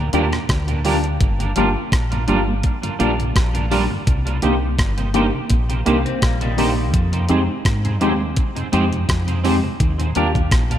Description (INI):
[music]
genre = lovers rock reggae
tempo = 84 BPM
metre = 4/4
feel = swing 54% on 16ths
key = unclear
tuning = A4 = 440 Hz
[part]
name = mellow tonewheel organ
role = accompaniment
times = 0.0-10.8 s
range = Eb2 to Eb4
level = -27 LUFS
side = equal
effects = none
[part]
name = deep dub fingered electric bass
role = bass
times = 0.0-10.8 s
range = G1 to Ab2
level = -21 LUFS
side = equal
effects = none
[part]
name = tine electric piano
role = accompaniment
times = 0.1-10.3 s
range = Ab3 to G4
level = -24 LUFS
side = left 3 dB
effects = medium stereo tremolo
[part]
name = electric guitar at the edge of break-up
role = stabs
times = 0.1-10.8 s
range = G3 to C5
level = -23 LUFS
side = right 4 dB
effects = analog chorus, tape echo
[part]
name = clean 12-bit digital drum machine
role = drums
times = 0.1-10.8 s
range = hi-hat, kick drum, rim click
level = -20 LUFS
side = equal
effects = none
[part]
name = clean electric guitar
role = arpeggios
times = 6.1-6.9 s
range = Eb3 to C4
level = -29 LUFS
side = left 5 dB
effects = harmonic tremolo, tape echo
[sound]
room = moderate concert hall reverb, RT60 2.0 s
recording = none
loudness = -16 LUFS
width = side -10 dB against mid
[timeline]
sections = 0.0-10.8 A section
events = none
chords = 0.0 Ebmaj7; 1.2 Gm7; 4.1 Cm7; 6.9 Fm7; 9.8 Ebmaj7